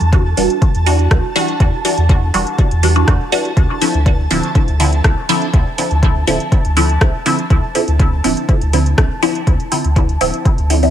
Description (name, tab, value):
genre	dub techno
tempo	122 BPM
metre	4/4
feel	straight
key	unclear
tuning	A4 = 437 Hz
part	filtered dub chord stab	stabs	0.0-10.9 s	D3 to F#4	-17 LUFS	equal	phaser, sidechain pumping, dub echo
part	soft dub sub bass	bass	0.0-10.9 s	D1 to E2	-15 LUFS	equal	sidechain pumping
part	soft vintage rhythm box	drums	0.0-10.9 s	hi-hat, rim click	-22 LUFS	right 1 dB	none
part	flickering grainy texture	texture	0.0-10.9 s	A5	-26 LUFS	equal	built-in reverb, sidechain pumping
part	electronic kick drum	drums	0.1-10.6 s	none	-13 LUFS	equal	none
room	light reverb, digital ambience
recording	none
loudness	-12 LUFS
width	side -10 dB against mid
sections	0.0-10.9 A section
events	none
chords	0.0 Em9; 3.6 Dm9